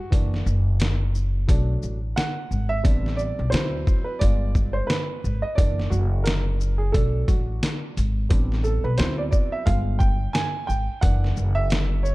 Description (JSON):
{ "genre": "hip hop, jazz-hop", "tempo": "88 BPM", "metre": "4/4", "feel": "swing 60% on 16ths", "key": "unclear", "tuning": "A4 = 439 Hz", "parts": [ { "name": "warm grand piano", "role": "accompaniment", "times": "0.0-12.1 s", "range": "E3 to Ab5", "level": "-28 LUFS", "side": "right 3 dB", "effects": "none" }, { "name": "upright bass", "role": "bass", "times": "0.1-12.1 s", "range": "F#1 to D2", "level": "-23 LUFS", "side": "equal", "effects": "none" }, { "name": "trip hop sampler-style drum kit", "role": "drums", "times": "0.1-12.1 s", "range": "hi-hat, kick drum, shaker, snare drum", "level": "-22 LUFS", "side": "equal", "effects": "none" } ], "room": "digital ambience", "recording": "dark, warm production", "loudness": "-20 LUFS", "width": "side -20 dB against mid", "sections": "0.0-12.1 A section", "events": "grand piano solo 0.0-12.1", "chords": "0.1 F#7b13; 1.5 Bm7; 2.8 Am11; 3.5 D13; 4.2 G7b9; 5.6 F#7b13; 6.9 Bm7; 8.3 Am11; 9.0 D13; 9.7 G7b9; 11.0 F#7b13", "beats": "| 0.12 0.80 1.48 2.16 | 2.85 3.53 4.21 4.89 | 5.57 6.25 6.94 7.62 | 8.30 8.98 9.66 10.35 | 11.03 11.71" }